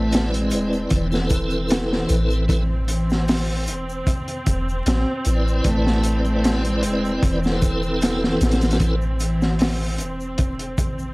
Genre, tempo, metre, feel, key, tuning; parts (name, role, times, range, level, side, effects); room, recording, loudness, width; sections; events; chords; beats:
trip hop; 76 BPM; 4/4; swing 53% on 16ths; A harmonic minor; A4 = 440 Hz
dark cello; melody; 0.0-9.7 s; E3 to A3; -26 LUFS; equal; tape echo
tonewheel organ; accompaniment; 0.0-9.0 s; C4 to D5; -25 LUFS; equal; overdrive, chorus vibrato, slow rotary speaker, tremolo
warm studio string section; sustained chords; 0.0-11.1 s; C4; -30 LUFS; right 1 dB
soft 808-style bass; bass; 0.0-11.1 s; E1 to A1; -23 LUFS; equal; tube saturation
crunchy breakbeat drum kit; drums; 0.1-11.0 s; hi-hat, kick drum, snare drum; -22 LUFS; equal
tube shaker; percussion; 0.1-11.1 s; -41 LUFS; left 1 dB
small room ambience; dry, gritty hardware recording, vinyl crackle; -18 LUFS; side -25 dB against mid
0.0-11.1 A section
0.0 Amadd9
0.12 0.91 1.70 | 2.49 3.28 4.07 4.86 | 5.65 6.44 7.23 8.02 | 8.81 9.60 10.39